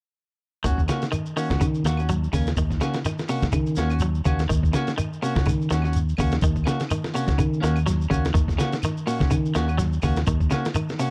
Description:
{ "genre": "afrobeat", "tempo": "125 BPM", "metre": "4/4", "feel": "swing 56% on 16ths", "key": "Eb dorian", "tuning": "A4 = 440 Hz", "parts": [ { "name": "clean electric guitar", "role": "arpeggios", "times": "0.6-11.1 s", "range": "Bb2 to Gb3", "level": "-30 LUFS", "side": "equal", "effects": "spring reverb" }, { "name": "clean electric guitar", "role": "stabs", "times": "0.6-11.1 s", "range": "Bb3 to Gb4", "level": "-31 LUFS", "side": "equal", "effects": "none" }, { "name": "fingered electric bass", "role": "bass", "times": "0.6-10.5 s", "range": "Db2 to Eb3", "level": "-26 LUFS", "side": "equal", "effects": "none" }, { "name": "lo-fi sampler-style drum kit", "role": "drums", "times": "0.6-11.1 s", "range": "hi-hat, kick drum, snare drum", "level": "-29 LUFS", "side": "equal", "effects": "none" }, { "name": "shekere", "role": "percussion", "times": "0.7-11.1 s", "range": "none", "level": "-33 LUFS", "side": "equal", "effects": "none" }, { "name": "claves", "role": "percussion", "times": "0.9-10.9 s", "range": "none", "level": "-43 LUFS", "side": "equal", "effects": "none" } ], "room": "light reverb", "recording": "dry, close 1970s-style studio recording", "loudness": "-23 LUFS", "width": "mono", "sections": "0.7-11.1 A section", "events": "none", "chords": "0.7 Ebm7" }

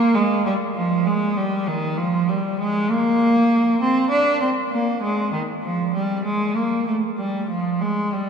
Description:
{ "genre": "classical, baroque-style suite movement for unaccompanied cello", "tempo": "65 BPM (dotted quarters)", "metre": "12/8", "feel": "rubato", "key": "unclear", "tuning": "A4 = 440 Hz", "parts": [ { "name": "rich cello", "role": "solo", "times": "0.0-8.3 s", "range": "Eb3 to D4", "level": "-18 LUFS", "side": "right 1 dB", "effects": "none" } ], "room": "wet cathedral reverb, RT60 5.2 s", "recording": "heard from further back in the room", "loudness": "-18 LUFS", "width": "side -6 dB against mid", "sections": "0.0-8.3 A section", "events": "none", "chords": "none" }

